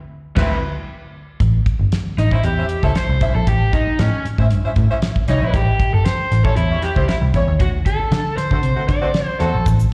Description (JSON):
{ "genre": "funk", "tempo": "116 BPM", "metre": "4/4", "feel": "straight", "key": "unclear", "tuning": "A4 = 440 Hz", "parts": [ { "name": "warm horn section", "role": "second line", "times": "0.4-9.6 s", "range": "G3 to E5", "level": "-28 LUFS", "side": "equal", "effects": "slapback echo" }, { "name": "raw garage guitar", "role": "accompaniment", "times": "0.4-9.6 s", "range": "F#3 to D5", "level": "-25 LUFS", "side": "equal", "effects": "overdrive, slapback echo" }, { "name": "vintage muted picked electric bass", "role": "bass", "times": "0.4-9.9 s", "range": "G1 to D3", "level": "-19 LUFS", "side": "equal", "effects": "none" }, { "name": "damped 70s drum kit", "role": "drums", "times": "0.4-9.8 s", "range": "crash cymbal, hi-hat, kick drum, snare drum", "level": "-23 LUFS", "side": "equal", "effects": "none" }, { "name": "egg shaker", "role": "percussion", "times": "9.7-9.9 s", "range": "none", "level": "-42 LUFS", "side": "equal", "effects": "none" } ], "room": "small room ambience", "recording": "live gig heard through the venue's PA, recital hall reverb", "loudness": "-18 LUFS", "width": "mono", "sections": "0.0-1.4 A section; 1.4-9.9 B section", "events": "band accent 0.0-1.4; overdriven electric guitar solo 1.4-9.9", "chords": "0.0 D13; 1.4 A7#9; 7.6 D7" }